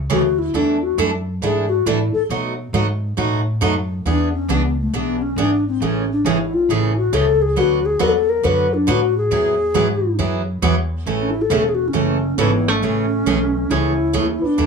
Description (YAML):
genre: country, western swing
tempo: 137 BPM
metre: 4/4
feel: swing 65% on 8ths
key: A major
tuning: A4 = 438 Hz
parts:
  - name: upright bass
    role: bass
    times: 0.0-14.7 s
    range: E1 to B2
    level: -22 LUFS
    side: equal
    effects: none
  - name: bright reedy bass ocarina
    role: melody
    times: 0.1-14.7 s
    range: A3 to C5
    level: -18 LUFS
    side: left 3 dB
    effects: none
  - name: picked steel-string acoustic guitar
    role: accompaniment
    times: 0.1-14.7 s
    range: B2 to B4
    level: -21 LUFS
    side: right 5 dB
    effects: none
  - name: archtop guitar, miked and amplified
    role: second line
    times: 12.4-14.7 s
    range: E3 to C#4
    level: -23 LUFS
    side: right 4 dB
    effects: none
room: light reverb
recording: small room ambience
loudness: -16 LUFS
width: side -5 dB against mid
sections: 0.0-12.8 A section; 12.8-14.7 B section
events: ocarina solo 0.0-12.8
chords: 0.0 Amaj7; 0.5 E7sus4; 2.3 B7; 4.1 E7; 5.8 Amaj7; 7.6 D6; 9.3 Eadd9; 11.1 A; 12.8 Amaj7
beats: 0.10 | 0.54 0.98 1.42 1.86 | 2.30 2.74 3.18 3.62 | 4.06 4.50 4.93 5.37 | 5.81 6.25 6.69 7.13 | 7.56 8.00 8.44 8.88 | 9.32 9.75 10.19 10.63 | 11.07 11.51 11.95 12.38 | 12.82 13.26 13.70 14.14 | 14.58